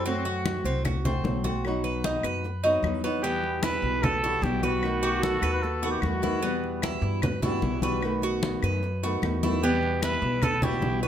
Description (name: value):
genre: latin, Cuban son and guajira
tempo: 150 BPM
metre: 4/4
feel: straight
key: E harmonic minor from 3.2 s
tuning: A4 = 441 Hz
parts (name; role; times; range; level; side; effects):
- warm oboe; second line; 0.0-0.8, 5.0-6.8 s; F#4 to B4; -32 LUFS; left 4 dB; none
- flamenco guitar; accompaniment; 0.0-11.1 s; B2 to F#4; -31 LUFS; left 1 dB; none
- Cuban tres; arpeggios; 0.0-11.1 s; B3 to C5; -31 LUFS; right 3 dB; none
- upright bass; bass; 0.0-11.1 s; B1 to G2; -30 LUFS; equal; none
- congas; percussion; 0.1-11.0 s; none; -31 LUFS; left 2 dB; none
- claves; percussion; 0.5-10.6 s; none; -39 LUFS; left 7 dB; none
- growling trumpet; melody; 3.2-6.2, 9.6-11.1 s; F#4 to B4; -28 LUFS; right 2 dB; none
room: moderate studio reverb, RT60 0.7 s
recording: none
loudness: -24 LUFS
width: side -10 dB against mid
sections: 0.0-3.2 A section; 3.2-11.1 B section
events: none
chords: 0.1 F#dim; 1.6 B; 3.2 Emadd9; 4.8 B7; 6.4 Emadd9; 8.0 B7; 9.6 Emadd9